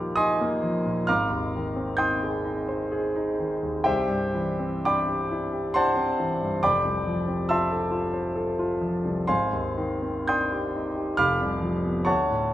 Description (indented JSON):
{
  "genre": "classical, impressionist solo piano",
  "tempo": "65 BPM",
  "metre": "3/4",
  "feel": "uneven beats, rubato",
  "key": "unclear",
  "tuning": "A4 = 443 Hz",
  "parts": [
    { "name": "warm grand piano", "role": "solo", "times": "0.0-12.5 s", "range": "F1 to G6", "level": "-23 LUFS", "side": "equal", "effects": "none" }
  ],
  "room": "moderate recital hall reverb, RT60 1.6 s",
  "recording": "none",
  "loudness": "-23 LUFS",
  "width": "side -13 dB against mid",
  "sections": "0.0-12.5 A section",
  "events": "none",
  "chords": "0.0 Ebadd9; 1.1 Abmaj7; 3.9 Cadd9; 6.6 Fmaj7; 9.3 Abmaj7#11; 11.2 F5",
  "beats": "0.14 | 1.07 2.01 2.93 | 3.87 4.86 5.76 | 6.62 7.49 8.37 | 9.30 10.29 11.20 | 12.08"
}